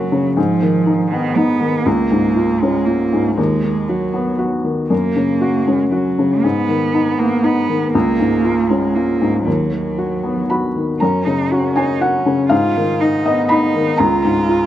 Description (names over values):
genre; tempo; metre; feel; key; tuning
neoclassical piano and strings; 119 BPM; 3/4; rubato; F# major; A4 = 438 Hz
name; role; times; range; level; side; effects
rich cello; second line; 0.0-14.7 s; D#3 to E#4; -20 LUFS; right 6 dB; slapback echo
felt-muted upright piano; accompaniment; 0.0-14.7 s; C#2 to B5; -15 LUFS; left 2 dB; none
room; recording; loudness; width
light reverb; recorded outdoors, with no room sound, nothing above 10.9 kHz; -14 LUFS; side -12 dB against mid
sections
0.0-11.0 A section; 11.0-14.7 A section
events
none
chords
0.4 G#m; 1.9 C#6; 3.4 B/D#; 4.9 F#; 6.4 G#m; 7.9 C#6; 9.5 B/D#; 11.0 F#; 12.5 G#m; 14.0 C#6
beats
| 0.37 0.87 1.36 | 1.86 2.36 2.87 | 3.38 3.89 4.40 | 4.91 5.42 5.92 | 6.44 6.94 7.44 | 7.94 8.44 8.95 | 9.46 9.98 10.50 | 11.01 11.52 12.02 | 12.51 13.01 13.50 | 13.99 14.49